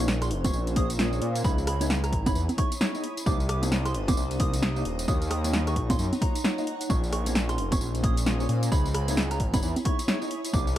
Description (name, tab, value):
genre	UK garage, two-step garage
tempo	132 BPM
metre	4/4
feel	swing 60% on 16ths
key	unclear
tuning	A4 = 439 Hz
part	soft synth bell	melody	0.0-10.7 s	Bb5 to Eb6	-36 LUFS	right 3 dB	chorus, dub echo
part	mellow electric guitar	stabs	0.0-10.6 s	Bb3 to Eb5	-34 LUFS	left 1 dB	tremolo
part	dark detuned saw bass	bass	0.0-10.8 s	Eb1 to Bb2	-28 LUFS	equal	none
part	granular cloud pad	texture	0.0-10.8 s	Db4 to Eb6	-36 LUFS	left 1 dB	built-in reverb, sidechain pumping
part	punchy analog drum machine	drums	0.1-10.7 s	congas, hi-hat, rim click, snare drum, tambourine	-30 LUFS	equal	overdrive
part	electronic kick drum	drums	0.4-10.6 s	none	-27 LUFS	equal	overdrive
room	light reverb, digital ambience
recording	vinyl crackle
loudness	-24 LUFS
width	side -12 dB against mid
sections	0.0-10.8 A section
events	none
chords	0.0 Bbm9; 1.4 Dbm9; 3.0 Cm9; 4.9 Ebm9; 6.9 Bbm9; 8.7 Dbm9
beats	0.08 0.54 0.99 | 1.45 1.90 2.35 2.81 | 3.26 3.72 4.17 4.63 | 5.08 5.54 5.99 6.45 | 6.90 7.35 7.81 8.26 | 8.72 9.17 9.63 10.08 | 10.54